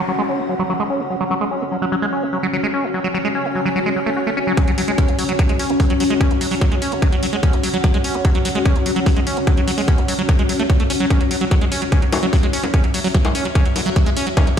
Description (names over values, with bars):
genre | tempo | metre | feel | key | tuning
psychedelic trance | 147 BPM | 4/4 | straight | unclear | A4 = 441 Hz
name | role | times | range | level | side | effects
downlifter | sound effects | 0.0-1.3 s | none | -34 LUFS | equal | none
granular cloud pad | texture | 0.0-14.6 s | C#4 to G#5 | -22 LUFS | left 2 dB | built-in reverb, sidechain pumping
liquid acid bass | riff | 0.1-14.6 s | F#3 to F#4 | -22 LUFS | right 1 dB | chorus, auto-pan, sidechain pumping, tape echo
electronic hi-hat and bongos | drums | 4.6-14.6 s | none | -27 LUFS | left 1 dB | overdrive, high-pass filter on hats, high-pass filter on perc, high-pass filter on snare
electronic kick drum | drums | 4.6-14.6 s | none | -16 LUFS | equal | overdrive
room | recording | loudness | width
light reverb | played on a big sound system in a bare room, large studio reverb, faint mains hum | -16 LUFS | side -8 dB against mid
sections
0.0-4.6 A section; 4.6-14.6 B section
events
filter sweep on acid bass 0.0-4.6; build-up 4.6-14.6; drum fill 11.1-14.6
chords
0.0 F#5